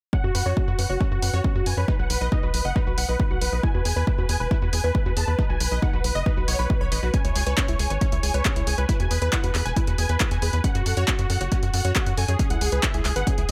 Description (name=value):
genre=uplifting trance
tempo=137 BPM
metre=4/4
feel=straight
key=E major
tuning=A4 = 440 Hz
part: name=supersaw chords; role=melody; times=0.1-13.5 s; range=F#4 to A5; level=-31 LUFS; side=equal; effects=sidechain pumping, low-pass filter, dub echo
part: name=unison pluck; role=arpeggios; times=0.1-13.5 s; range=C#4 to B5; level=-35 LUFS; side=equal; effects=sidechain pumping, dub echo
part: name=electronic kick drum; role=drums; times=0.1-13.4 s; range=none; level=-26 LUFS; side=equal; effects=none
part: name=tight sequencer bass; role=bass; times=0.2-13.5 s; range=E1 to F#2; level=-27 LUFS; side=equal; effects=sidechain pumping
part: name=punchy analog drum machine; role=drums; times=0.3-13.5 s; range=handclaps, hi-hat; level=-31 LUFS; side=equal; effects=overdrive
room=digital ambience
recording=none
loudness=-23 LUFS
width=mono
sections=0.1-13.5 A section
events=none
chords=0.1 F#sus4; 1.9 B; 3.6 E; 5.4 B; 7.1 C#7(no3); 8.9 E; 10.6 F#m; 12.4 C#m